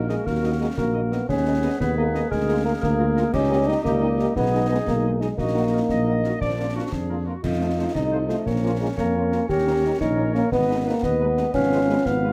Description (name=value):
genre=military-style march for wind band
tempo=117 BPM (dotted quarters)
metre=6/8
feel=straight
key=Eb minor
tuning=A4 = 440 Hz
part: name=mellow woodwind section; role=second line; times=0.0-12.3 s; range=Gb4 to F5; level=-33 LUFS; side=equal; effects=none
part: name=warm euphonium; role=second line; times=0.0-12.3 s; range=Ab3 to G4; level=-25 LUFS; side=equal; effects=none
part: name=dark trombone section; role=sustained chords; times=0.0-12.3 s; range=Eb3 to Eb4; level=-34 LUFS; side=equal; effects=none
part: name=mellow tuba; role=bass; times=0.0-12.3 s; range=Ab1 to F2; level=-28 LUFS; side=equal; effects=none
part: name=clear trumpet section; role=melody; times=0.1-12.3 s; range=Bb4 to Eb5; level=-46 LUFS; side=equal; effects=none
part: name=warm French horn section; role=accompaniment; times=0.1-12.3 s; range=Ab3 to Ab4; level=-33 LUFS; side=equal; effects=none
part: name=concert snare drum, concert bass drum and clash cymbals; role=drums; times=0.1-12.2 s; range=none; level=-34 LUFS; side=equal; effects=none
room=light reverb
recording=close, detailed microphones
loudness=-22 LUFS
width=mono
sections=0.0-12.3 A section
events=none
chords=0.0 Ebm; 1.3 Abm/Eb; 2.3 Bb7/D; 3.3 Eb7/Db; 4.4 Abm/Cb; 5.4 Ebm/Bb; 6.4 Bb; 7.4 F7; 8.5 Bbm; 9.5 Eb7; 10.5 Abm; 11.5 Fdim/Ab